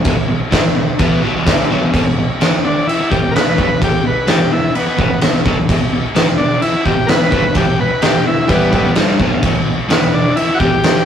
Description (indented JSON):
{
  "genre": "garage rock duo or trio",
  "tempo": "128 BPM",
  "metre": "4/4",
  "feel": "straight",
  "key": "unclear",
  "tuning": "A4 = 440 Hz",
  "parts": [
    { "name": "crunchy overdriven guitar", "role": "riff", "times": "0.0-11.1 s", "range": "E2 to E4", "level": "-17 LUFS", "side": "equal", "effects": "spring reverb" },
    { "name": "oversized low-tuned drum kit", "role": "drums", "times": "0.0-10.9 s", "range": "crash cymbal, kick drum, snare drum", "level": "-15 LUFS", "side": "equal", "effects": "none" },
    { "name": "combo organ", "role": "melody", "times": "2.6-11.1 s", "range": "G3 to B4", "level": "-16 LUFS", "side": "left 1 dB", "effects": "none" }
  ],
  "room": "moderate studio reverb, RT60 0.6 s",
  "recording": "rough rehearsal-room recording, tube saturation",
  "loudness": "-12 LUFS",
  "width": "side -8 dB against mid",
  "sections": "0.0-1.9 A section; 1.9-11.1 B section",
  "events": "transistor combo organ solo 1.9-11.1",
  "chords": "0.0 E5",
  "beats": "| 0.05 0.52 0.99 1.46 | 1.93 2.40 2.87 3.34 | 3.81 4.28 4.75 5.22 | 5.69 6.16 6.62 7.09 | 7.56 8.03 8.49 8.96 | 9.43 9.90 10.36 10.83"
}